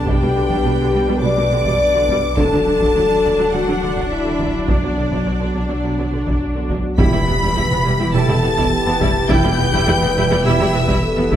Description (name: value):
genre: cinematic, hybrid orchestral and electronic film score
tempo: 104 BPM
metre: 4/4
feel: straight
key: unclear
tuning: A4 = 440 Hz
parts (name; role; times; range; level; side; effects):
- clear symphonic violin section; second line; 0.0-11.3 s; D5 to D6; -25 LUFS; equal; none
- clear symphonic viola section; accompaniment; 0.0-11.4 s; D3 to E4; -24 LUFS; right 1 dB; none
- brassy analog pad; sustained chords; 0.0-11.4 s; F#3 to D5; -25 LUFS; equal; chorus
- warm sub bass; bass; 0.0-11.4 s; D1 to B1; -27 LUFS; equal; none
- warm French horn section; sustained chords; 0.1-11.4 s; D4 to D5; -20 LUFS; left 3 dB; none
- rich symphonic cello section; bass; 0.1-11.4 s; E2 to D3; -24 LUFS; right 2 dB; none
- warm chamber double bass section; bass; 0.1-11.4 s; E1 to D2; -24 LUFS; right 2 dB; none
- taiko ensemble; drums; 0.1-11.4 s; none; -22 LUFS; equal; none
- bright symphonic violin section; melody; 7.0-11.3 s; E6 to B6; -24 LUFS; left 3 dB; none
- warm trombone section; sustained chords; 7.0-10.6 s; G3 to E4; -27 LUFS; right 3 dB; none
- impact; sound effects; 7.0-9.3 s; none; -27 LUFS; equal; none
room: wet recital hall reverb, RT60 1.7 s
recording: recorded in a church or concert hall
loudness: -14 LUFS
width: side -10 dB against mid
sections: 0.0-7.0 A section; 7.0-11.4 A section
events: impact 7.0-9.3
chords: 0.0 G/B; 2.4 D; 4.7 Bm; 7.0 Em